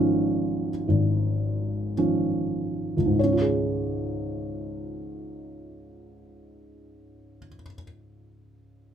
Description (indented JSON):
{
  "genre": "classical, lyrical solo piano",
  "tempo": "47-65 BPM",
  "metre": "4/4",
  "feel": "rubato",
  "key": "Db major",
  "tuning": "A4 = 441 Hz",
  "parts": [
    { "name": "felt-muted upright piano", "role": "solo", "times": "0.0-8.9 s", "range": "Ab1 to F5", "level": "-24 LUFS", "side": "equal", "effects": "none" }
  ],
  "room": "light reverb",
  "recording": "none",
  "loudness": "-23 LUFS",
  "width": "side -9 dB against mid",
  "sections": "0.0-3.2 A section; 3.2-7.9 B section",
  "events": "slowing down 0.0-3.2",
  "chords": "0.0 Dbadd9"
}